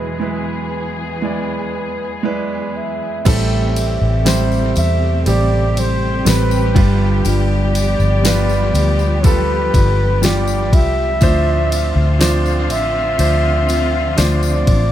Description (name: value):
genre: pop ballad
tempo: 60 BPM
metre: 4/4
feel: straight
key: A minor from 3.3 s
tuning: A4 = 440 Hz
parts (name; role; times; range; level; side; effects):
- dark flugelhorn; melody; 0.0-14.9 s; B4 to E5; -22 LUFS; right 1 dB; dub echo
- clear concert grand piano; accompaniment; 0.0-14.9 s; E2 to D5; -21 LUFS; right 4 dB; none
- muted studio string section; sustained chords; 0.0-14.9 s; C3 to G#4; -25 LUFS; left 3 dB; none
- nylon-string guitar; arpeggios; 3.3-14.9 s; A2 to C5; -27 LUFS; left 4 dB; dub echo
- vintage muted fingered electric bass; bass; 3.3-14.9 s; G1 to E2; -16 LUFS; equal; none
- smooth R&B drum kit; drums; 3.3-14.9 s; crash cymbal, kick drum, ride cymbal, snare drum; -19 LUFS; equal; none
- tambourine; percussion; 3.3-14.7 s; none; -29 LUFS; left 12 dB; none
room: studio reverb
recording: echo-heavy mix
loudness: -13 LUFS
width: side -12 dB against mid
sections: 0.0-3.3 A section; 3.3-14.9 B section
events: none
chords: 0.0 E; 3.3 Am7; 6.8 G7; 11.2 Dm7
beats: 0.21 1.22 2.24 | 3.26 4.26 5.26 6.26 | 7.25 8.25 9.24 10.23 | 11.22 12.20 13.19 14.18